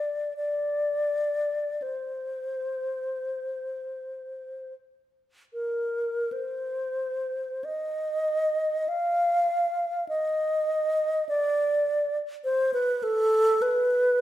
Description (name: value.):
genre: classical, free, expressive piece for unaccompanied alto flute.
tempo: 32-53 BPM.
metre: 4/4.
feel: rubato.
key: C minor.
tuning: A4 = 440 Hz.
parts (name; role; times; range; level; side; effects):
alto flute; solo; 0.0-14.2 s; A4 to F5; -25 LUFS; equal; none.
room: wet recital hall reverb, RT60 1.3 s.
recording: minimal, uncompressed stereo recording.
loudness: -25 LUFS.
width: side -13 dB against mid.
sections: 0.0-6.3 A section; 6.3-14.2 B section.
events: none.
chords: none.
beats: | 0.36 1.82 3.28 4.73 | 6.33 7.65 8.88 10.09 | 11.30 12.45 13.62.